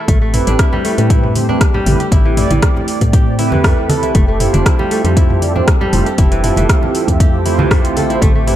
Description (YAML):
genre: afro house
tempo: 118 BPM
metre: 4/4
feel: straight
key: A minor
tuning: A4 = 439 Hz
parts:
  - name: kora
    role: arpeggios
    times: 0.0-8.6 s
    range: E3 to A4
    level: -20 LUFS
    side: left 1 dB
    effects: sidechain pumping, digital delay
  - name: warm analog pad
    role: sustained chords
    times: 0.1-8.6 s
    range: A3 to A4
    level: -22 LUFS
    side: equal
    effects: chorus, sidechain pumping
  - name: woody FM bass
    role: bass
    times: 0.1-8.5 s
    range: F1 to A2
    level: -17 LUFS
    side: equal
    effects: sidechain pumping
  - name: deep house drum kit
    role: drums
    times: 0.1-8.6 s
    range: hi-hat, rim click, toms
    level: -20 LUFS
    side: equal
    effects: small room reverb
  - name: electronic kick drum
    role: drums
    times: 0.1-8.3 s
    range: none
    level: -12 LUFS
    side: equal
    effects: small room reverb
  - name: congas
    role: percussion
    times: 0.1-8.3 s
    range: none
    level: -21 LUFS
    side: right 2 dB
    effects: none
  - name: mellow synth brass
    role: stabs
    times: 0.3-8.6 s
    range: A3 to E5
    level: -20 LUFS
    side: right 4 dB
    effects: chorus, sidechain pumping, digital delay
room: light reverb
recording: none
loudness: -11 LUFS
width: side -12 dB against mid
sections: 0.1-8.6 A section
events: drop 0.1-8.6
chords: 0.1 Am7; 4.2 Fmaj7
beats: | 0.08 0.59 1.10 1.61 | 2.12 2.63 3.13 3.64 | 4.15 4.66 5.17 5.68 | 6.18 6.69 7.20 7.71 | 8.22